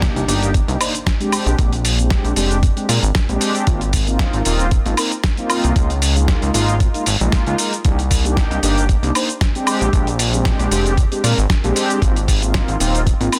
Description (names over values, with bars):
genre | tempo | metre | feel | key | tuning
nu-disco, nu disco | 115 BPM | 4/4 | swing 54% on 16ths | unclear | A4 = 440 Hz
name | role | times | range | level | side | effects
mellow synth brass | accompaniment | 0.0-13.4 s | Ab3 to C5 | -24 LUFS | equal | chorus, cassette tape, sidechain pumping, digital delay
chorused synth bass | bass | 0.0-13.3 s | Eb1 to Bb2 | -21 LUFS | equal | none
dusty soul sampler-style drum kit | drums | 0.0-13.4 s | hi-hat, shaker, snare drum, woodblock | -24 LUFS | equal | small room ambience
electronic kick drum | drums | 0.0-13.2 s | none | -19 LUFS | equal | small room ambience
impact | sound effects | 0.0-1.6 s | none | -35 LUFS | equal | none
room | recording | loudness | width
light reverb | dense, heavily limited modern master | -17 LUFS | mono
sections
0.0-13.4 A section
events
impact 0.0-1.6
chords
0.0 Cm9; 1.3 Bb13; 3.7 Ab6; 5.8 Db69; 7.8 Cm9; 9.7 Bb13; 12.0 Ab6